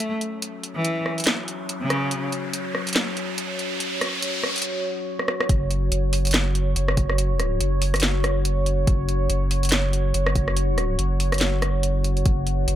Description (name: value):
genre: deep dubstep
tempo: 142 BPM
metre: 4/4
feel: swing 58% on 16ths, half-time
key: unclear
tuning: A4 = 440 Hz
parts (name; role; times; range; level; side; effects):
- clear cello; melody; 0.0-2.2 s; C#3 to A3; -27 LUFS; equal; dub echo
- deep dark ambient pad; sustained chords; 0.2-12.8 s; F#4 to C#5; -28 LUFS; equal; chorus, built-in reverb
- garage drum kit; drums; 0.0-12.8 s; hi-hat, rim click, snare drum; -24 LUFS; equal; none
- riser; sound effects; 1.1-4.7 s; none; -30 LUFS; right 1 dB; none
- saturated sub bass; bass; 5.5-12.8 s; F#1; -22 LUFS; equal; none
- electronic kick drum; drums; 5.5-12.4 s; none; -22 LUFS; equal; overdrive
room: light reverb, digital ambience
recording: none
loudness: -21 LUFS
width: side -12 dB against mid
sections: 0.0-5.5 A section; 5.5-12.8 B section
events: build-up 0.0-5.5; filter sweep on ambient pad 0.0-5.5; riser 1.1-4.7; drum fill 5.2-5.5; drop 5.5-12.8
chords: 0.0 F#5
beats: 0.00 | 0.42 0.85 1.27 1.69 | 2.12 2.54 2.96 3.38 | 3.81 4.23 4.65 5.07 | 5.50 5.92 6.34 6.76 | 7.18 7.61 8.03 8.45 | 8.88 9.30 9.72 10.14 | 10.56 10.99 11.41 11.83 | 12.26 12.68